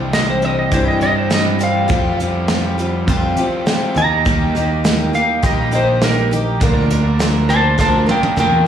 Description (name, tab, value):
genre	folk rock and heartland rock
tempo	102 BPM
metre	4/4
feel	straight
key	unclear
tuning	A4 = 441 Hz
part	picked twelve-string acoustic guitar	accompaniment	0.0-8.7 s	C3 to Bb4	-20 LUFS	left 2 dB	plate reverb, slapback echo
part	raw garage guitar	riff	0.0-8.7 s	C3 to G4	-24 LUFS	right 1 dB	overdrive, slapback echo
part	picked electric bass	bass	0.0-8.7 s	Bb1 to G2	-18 LUFS	right 1 dB	none
part	clean electric guitar	melody	0.1-8.7 s	Bb4 to Bb5	-18 LUFS	equal	plate reverb, slapback echo, tape echo
part	soft brush drum kit	drums	0.1-8.5 s	hi-hat, kick drum, snare drum, toms	-20 LUFS	right 1 dB	none
part	bright tonewheel organ	sustained chords	4.2-8.7 s	D4 to Bb4	-29 LUFS	right 2 dB	slow rotary speaker, plate reverb
part	tube shaker	percussion	4.3-8.5 s	none	-38 LUFS	right 4 dB	none
room	light reverb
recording	live gig heard through the venue's PA, club reverb, studio reverb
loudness	-13 LUFS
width	side -9 dB against mid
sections	0.0-8.7 A section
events	clean electric guitar solo 0.0-8.7; drum fill 7.8-8.7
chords	0.0 Cadd9; 1.9 Fsus2; 4.0 Eb; 6.6 Bb/D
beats	0.13 0.72 1.31 | 1.90 2.49 3.08 3.67 | 4.26 4.84 5.43 6.02 | 6.61 7.20 7.79 8.38